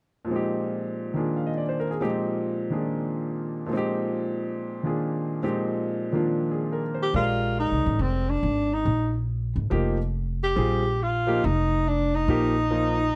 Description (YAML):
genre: modal jazz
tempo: 140 BPM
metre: 4/4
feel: swing 65% on 8ths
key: Bb mixolydian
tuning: A4 = 439 Hz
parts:
  - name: bright baby grand piano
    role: accompaniment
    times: 0.2-13.0 s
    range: Bb2 to F5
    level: -29 LUFS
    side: equal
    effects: none
  - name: breathy tenor saxophone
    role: melody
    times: 7.0-13.2 s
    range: C4 to G4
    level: -27 LUFS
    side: equal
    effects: none
  - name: upright bass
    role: bass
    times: 7.1-13.1 s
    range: F1 to C2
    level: -28 LUFS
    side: equal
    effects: none
room: light reverb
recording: none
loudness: -26 LUFS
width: mono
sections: 0.3-7.1 A section; 7.1-13.2 B section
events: none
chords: 0.3 Bb13sus4; 7.1 Bb7sus4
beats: | 0.30 0.73 1.16 1.58 | 2.01 2.44 2.87 3.29 | 3.72 4.15 4.58 5.00 | 5.43 5.86 6.29 6.71 | 7.14 7.57 8.00 8.43 | 8.86 9.28 9.71 10.14 | 10.57 10.99 11.42 11.85 | 12.28 12.71 13.14